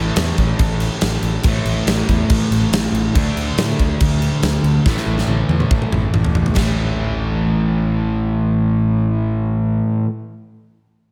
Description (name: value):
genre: hard rock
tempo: 141 BPM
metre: 4/4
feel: straight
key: unclear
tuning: A4 = 440 Hz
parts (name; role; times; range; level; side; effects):
- crunchy overdriven guitar; riff; 0.0-10.1 s; A2 to D4; -21 LUFS; equal; none
- picked electric bass; bass; 0.0-9.8 s; A1 to A2; -24 LUFS; equal; none
- huge arena drum kit; drums; 0.2-6.7 s; crash cymbal, kick drum, snare drum, toms; -22 LUFS; equal; none
room: moderate recital hall reverb, RT60 1.5 s, studio reverb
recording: none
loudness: -18 LUFS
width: mono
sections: 0.0-6.6 A section; 6.6-10.0 B section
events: drum fill 4.9-6.6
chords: 0.0 A5; 3.2 D5; 4.9 A5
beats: 0.16 0.59 1.02 | 1.44 1.87 2.30 2.73 | 3.15 3.58 4.01 4.43 | 4.86 5.29 5.71 6.14 | 6.57 6.99 7.42 7.84 | 8.26 8.69 9.11 9.54